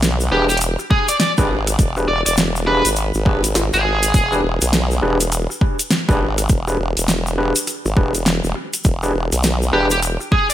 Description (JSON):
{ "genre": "glitch hop", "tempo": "102 BPM", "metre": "4/4", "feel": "swing 61% on 16ths", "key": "unclear", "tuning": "A4 = 440 Hz", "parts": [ { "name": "formant-sweep wobble bass", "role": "bass", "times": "0.0-10.2 s", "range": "E1 to B1", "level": "-20 LUFS", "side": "equal", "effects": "chorus, tube saturation" }, { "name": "pop drum kit", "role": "drums", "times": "0.0-10.5 s", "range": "hi-hat, rim click, snare drum", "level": "-21 LUFS", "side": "equal", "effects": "overdrive, gated reverb" }, { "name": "tube shaker", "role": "percussion", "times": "0.0-10.5 s", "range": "none", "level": "-25 LUFS", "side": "left 2 dB", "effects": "none" }, { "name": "smooth overdriven lead guitar", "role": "melody", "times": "0.3-4.3, 9.7-10.5 s", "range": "G4 to D5", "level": "-20 LUFS", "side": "right 1 dB", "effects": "digital delay" }, { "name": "overdriven tine electric piano", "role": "stabs", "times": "0.3-9.9 s", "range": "D4 to B4", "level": "-23 LUFS", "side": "equal", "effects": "fast tremolo, sidechain pumping, digital delay" }, { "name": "electronic kick drum", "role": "drums", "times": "0.9-10.5 s", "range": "none", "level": "-16 LUFS", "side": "equal", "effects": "overdrive" } ], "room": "light reverb", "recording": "bright 1980s-style digital production", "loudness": "-15 LUFS", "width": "side -12 dB against mid", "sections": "0.0-10.5 A section", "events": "none", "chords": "0.0 E7#9", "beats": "0.03 0.61 1.20 | 1.79 2.38 2.97 3.56 | 4.14 4.73 5.32 5.91 | 6.50 7.08 7.67 8.26 | 8.85 9.44 10.03" }